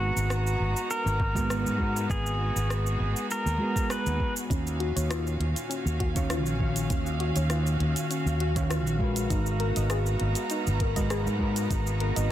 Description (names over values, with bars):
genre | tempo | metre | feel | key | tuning
sunset chillout | 100 BPM | 4/4 | straight | unclear | A4 = 436 Hz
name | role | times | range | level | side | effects
pedal steel guitar | melody | 0.0-4.3 s | Gb4 to Cb5 | -31 LUFS | equal | tape echo
semi-hollow electric guitar | accompaniment | 0.0-12.3 s | Eb3 to F5 | -32 LUFS | moving between left 4 dB and right 4 dB | auto-pan, tape echo
clear studio string section | sustained chords | 0.0-12.3 s | Bb2 to Bb5 | -35 LUFS | right 2 dB | none
fretless electric bass | bass | 0.0-12.3 s | Ab1 to Ab2 | -28 LUFS | equal | none
smooth R&B drum kit | drums | 0.2-12.3 s | cabasa, hi-hat, rim click | -36 LUFS | equal | studio reverb, soft clipping on snare
electronic kick drum | drums | 1.2-11.8 s | none | -30 LUFS | equal | studio reverb
soft round pluck | arpeggios | 4.5-12.3 s | Db4 to Eb5 | -35 LUFS | left 4 dB | chorus, tape echo
wind-like tuned noise texture | texture | 5.2-12.3 s | F5 | -40 LUFS | right 4 dB | built-in reverb
room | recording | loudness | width
light reverb | dense, heavily limited modern master | -25 LUFS | side -12 dB against mid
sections
0.0-12.3 A section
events
none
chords
0.0 Abm9; 4.5 Ebm9; 9.3 Abm9